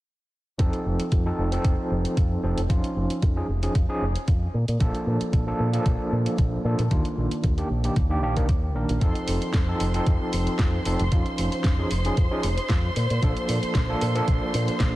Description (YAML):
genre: nu-disco, nu disco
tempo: 114 BPM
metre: 4/4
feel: swing 53% on 16ths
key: F mixolydian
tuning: A4 = 438 Hz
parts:
  - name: overdriven tine electric piano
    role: accompaniment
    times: 0.6-15.0 s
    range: Eb3 to Bb4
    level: -27 LUFS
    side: right 1 dB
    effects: medium tremolo, vintage 12-bit sampler grit, sidechain pumping, tape echo
  - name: fingered electric bass with an envelope filter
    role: bass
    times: 0.6-15.0 s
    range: F1 to Bb2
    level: -25 LUFS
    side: equal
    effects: none
  - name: electronic kick drum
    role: drums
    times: 0.6-14.9 s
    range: none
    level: -23 LUFS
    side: equal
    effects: none
  - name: pop drum kit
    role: drums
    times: 0.6-14.9 s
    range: hi-hat, snare drum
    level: -34 LUFS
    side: equal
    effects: none
  - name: rich symphonic violin section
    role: sustained chords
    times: 9.0-15.0 s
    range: C5 to C6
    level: -32 LUFS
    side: left 1 dB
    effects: sidechain pumping
room: light reverb, digital ambience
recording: none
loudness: -22 LUFS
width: side -17 dB against mid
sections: 0.6-15.0 A section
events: filter sweep on fingered electric bass 0.6-15.0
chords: 0.6 F7; 2.7 Dbadd9/F; 4.5 Bbmaj7; 6.9 Ebmaj7; 9.0 F7; 11.1 Dbadd9/F; 13.0 Bbmaj7